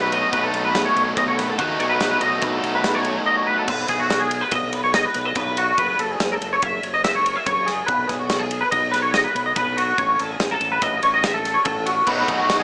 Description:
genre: math rock and midwest emo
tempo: 143 BPM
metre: 5/4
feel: straight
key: unclear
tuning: A4 = 439 Hz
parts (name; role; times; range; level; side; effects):
- twangy electric guitar; arpeggios; 0.0-12.6 s; F#4 to E5; -19 LUFS; equal; ensemble chorus, slapback echo
- overdriven electric guitar; riff; 0.0-3.7, 12.1-12.6 s; B2 to F#4; -22 LUFS; equal; none
- growling fingered electric bass; bass; 0.0-12.6 s; F#1 to D#2; -29 LUFS; equal; overdrive
- loose indie drum kit; drums; 0.1-12.6 s; crash cymbal, kick drum, ride cymbal, snare drum; -25 LUFS; equal; none
room: light reverb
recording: small speaker sound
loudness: -18 LUFS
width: side -31 dB against mid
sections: 0.0-3.7 A section; 3.7-12.6 B section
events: none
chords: 0.0 B7; 3.7 B; 5.8 F#m7; 7.9 B; 10.0 A; 12.1 B7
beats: 0.32 0.74 1.16 | 1.58 2.00 2.42 2.84 3.26 | 3.68 4.10 4.52 4.94 5.36 | 5.78 6.20 6.62 7.04 7.46 | 7.88 8.30 8.72 9.13 9.55 | 9.97 10.39 10.81 11.23 11.65 | 12.07 12.49

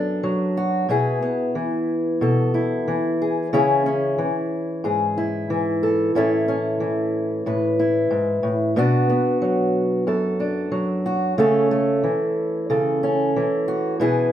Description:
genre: folk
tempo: 92 BPM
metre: 4/4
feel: straight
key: unclear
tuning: A4 = 440 Hz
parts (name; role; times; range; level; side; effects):
- fingerpicked old ladder-braced acoustic guitar; solo; 0.0-14.3 s; F#2 to B4; -19 LUFS; equal; none
room: wet studio reverb, RT60 0.8 s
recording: heard from further back in the room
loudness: -19 LUFS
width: side -10 dB against mid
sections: 0.0-14.3 A section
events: none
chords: 0.0 Bm; 0.9 E/B; 3.5 C#m; 6.1 A; 8.8 Bm; 11.4 A/C#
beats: 0.24 | 0.90 1.55 2.21 2.86 | 3.52 4.17 4.83 5.48 | 6.13 6.79 7.45 8.10 | 8.76 9.41 10.07 10.72 | 11.38 12.03 12.69 13.34 | 14.00

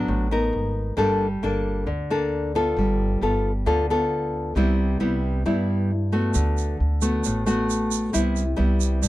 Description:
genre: bossa nova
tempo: 134 BPM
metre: 4/4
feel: straight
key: unclear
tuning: A4 = 440 Hz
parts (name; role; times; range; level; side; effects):
- nylon-string guitar; accompaniment; 0.0-9.1 s; G2 to Bb4; -22 LUFS; left 1 dB; none
- upright bass; bass; 0.0-9.1 s; G1 to G2; -25 LUFS; equal; none
- egg shaker; percussion; 6.3-9.1 s; none; -31 LUFS; right 17 dB; none
room: little or no reverb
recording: dry, close 1970s-style studio recording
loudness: -20 LUFS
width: side -16 dB against mid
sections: 0.0-9.1 A section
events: none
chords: 0.0 D6/A; 0.5 G#madd9; 1.0 Gmadd9; 2.8 G9; 4.6 Cmaj7; 6.3 D6; 8.1 Cmaj7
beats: 0.08 0.53 | 0.98 1.42 1.87 2.32 | 2.77 3.21 3.66 4.11 | 4.56 5.00 5.45 5.90 | 6.35 6.79 7.24 7.69 | 8.14 8.58 9.03

